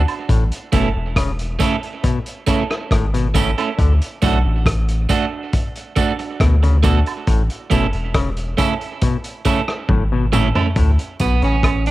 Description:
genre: roots reggae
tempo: 69 BPM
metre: 4/4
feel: straight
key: A major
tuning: A4 = 440 Hz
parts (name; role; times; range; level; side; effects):
- soft dub sub bass; bass; 0.0-11.9 s; E1 to D2; -17 LUFS; equal; none
- vintage drum kit; drums; 0.1-11.9 s; hi-hat, kick drum, rim click, toms; -20 LUFS; equal; none
- woodblock and tambourine; percussion; 0.1-11.8 s; none; -32 LUFS; right 8 dB; none
- clav; arpeggios; 0.3-11.6 s; A2 to D3; -24 LUFS; left 5 dB; auto-wah, cassette tape
- electric guitar at the edge of break-up; accompaniment; 0.7-11.9 s; A3 to A4; -22 LUFS; right 6 dB; cassette tape, tape echo
room: studio reverb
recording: home recording on cassette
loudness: -16 LUFS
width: side -17 dB against mid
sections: 0.0-10.8 A section; 10.8-11.9 B section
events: drum fill 9.9-10.8; clean electric guitar solo 10.8-11.9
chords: 0.3 A; 3.8 D; 7.3 A; 10.8 D5

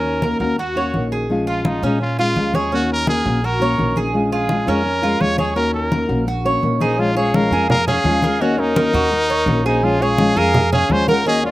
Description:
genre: latin, Cuban son and guajira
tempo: 169 BPM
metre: 4/4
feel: straight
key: Bb minor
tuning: A4 = 440 Hz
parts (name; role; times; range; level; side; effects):
- bright trumpet; melody; 0.0-11.5 s; Eb4 to Db5; -21 LUFS; right 1 dB; none
- nylon-string guitar; accompaniment; 0.0-11.5 s; Eb3 to Gb4; -20 LUFS; left 2 dB; slapback echo
- Cuban tres; arpeggios; 0.0-11.5 s; Db4 to Db5; -22 LUFS; right 2 dB; slapback echo
- upright bass; bass; 0.0-11.5 s; Bb1 to Bb2; -24 LUFS; equal; none
- congas; percussion; 0.1-11.5 s; none; -23 LUFS; left 1 dB; none
- hollow concert flute; second line; 6.8-11.5 s; Bb4 to Ab5; -24 LUFS; left 2 dB; slapback echo
room: little or no reverb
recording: recorded outdoors, with no room sound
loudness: -15 LUFS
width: side -16 dB against mid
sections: 0.0-7.0 A section; 7.0-11.5 B section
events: none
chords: 0.0 Ebm7; 1.3 Bbm7; 2.7 Ebm7; 4.1 Bbm7; 5.6 Ebm7; 7.0 Bbm7; 8.4 Ebm7; 9.8 Bbm7

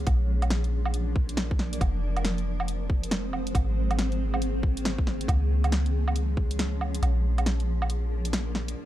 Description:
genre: future garage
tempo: 138 BPM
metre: 4/4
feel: swing 63% on 16ths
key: unclear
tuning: A4 = 440 Hz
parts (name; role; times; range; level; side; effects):
- granular cloud pad; sustained chords; 0.0-8.9 s; Eb3 to D5; -33 LUFS; equal; built-in reverb, sidechain pumping
- soft 808-style bass; bass; 0.0-8.7 s; F1 to Db2; -27 LUFS; equal; sidechain pumping
- electronic kick drum; drums; 0.1-6.5 s; none; -25 LUFS; equal; studio reverb
- garage drum kit; drums; 0.1-8.7 s; hi-hat, snare drum, woodblock; -31 LUFS; right 1 dB; low-pass filter on hats, studio reverb, low-pass filter on perc, low-pass filter on snare
room: digital ambience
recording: dark, warm production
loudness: -24 LUFS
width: side -14 dB against mid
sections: 0.0-8.8 A section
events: kick drops out 7.0-8.8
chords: 0.1 Bb; 1.8 Fm; 3.5 Abadd9; 5.3 Db; 7.0 Bb

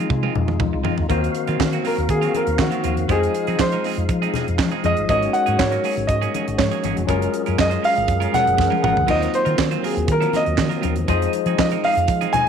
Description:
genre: disco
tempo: 120 BPM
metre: 4/4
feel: straight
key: Eb dorian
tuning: A4 = 440 Hz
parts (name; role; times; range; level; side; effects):
- warm grand piano; melody; 0.0-12.5 s; Gb4 to Ab5; -21 LUFS; right 1 dB; slapback echo
- barky tine electric piano; accompaniment; 0.0-12.5 s; Eb3 to F5; -27 LUFS; left 13 dB; overdrive
- clean electric guitar; accompaniment; 0.0-12.5 s; Eb3 to C5; -28 LUFS; right 14 dB; warbly pitch drift
- tonewheel organ; sustained chords; 0.0-12.5 s; Eb3 to F5; -28 LUFS; equal; chorus vibrato, slow rotary speaker
- hollow-body short-scale fingered electric bass; bass; 0.0-12.3 s; F1 to F3; -23 LUFS; equal; none
- tight funk drum kit; drums; 0.1-12.5 s; crash cymbal, handclaps, hi-hat, kick drum, snare drum, toms; -25 LUFS; right 4 dB; none
- congas; percussion; 0.1-12.5 s; none; -28 LUFS; left 11 dB; none
room: light reverb, studio ambience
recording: 1960s-style stereo with parts hard left and right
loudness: -17 LUFS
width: side -7 dB against mid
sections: 0.0-1.1 A section; 1.1-12.5 B section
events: drum fill 0.1-1.1, 8.6-9.1; grand piano solo 1.1-12.5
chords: 0.0 Fm7; 1.1 Ebm69; 3.1 Fm7; 5.1 Ab9sus4; 7.1 Gbmaj9; 9.1 Ebm69; 11.1 Fm7

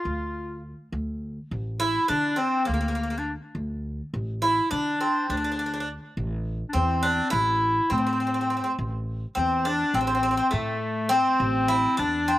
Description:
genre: Turkish makam ensemble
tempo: 206 BPM (eighths)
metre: 9/8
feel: straight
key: D makam nihavent, A minor from 6.2 s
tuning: A4 = 440 Hz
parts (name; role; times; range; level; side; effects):
- Greek bouzouki; melody; 0.0-12.4 s; A3 to F4; -25 LUFS; right 1 dB; slapback echo
- bright clarinet; second line; 0.0-12.4 s; A3 to F4; -26 LUFS; left 2 dB; slapback echo
- upright bass; bass; 0.1-12.4 s; A1 to D3; -30 LUFS; equal; none
room: little or no reverb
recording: recorded outdoors, with no room sound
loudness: -23 LUFS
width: side -15 dB against mid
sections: 0.0-6.2 A section; 6.2-12.4 B section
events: none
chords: none

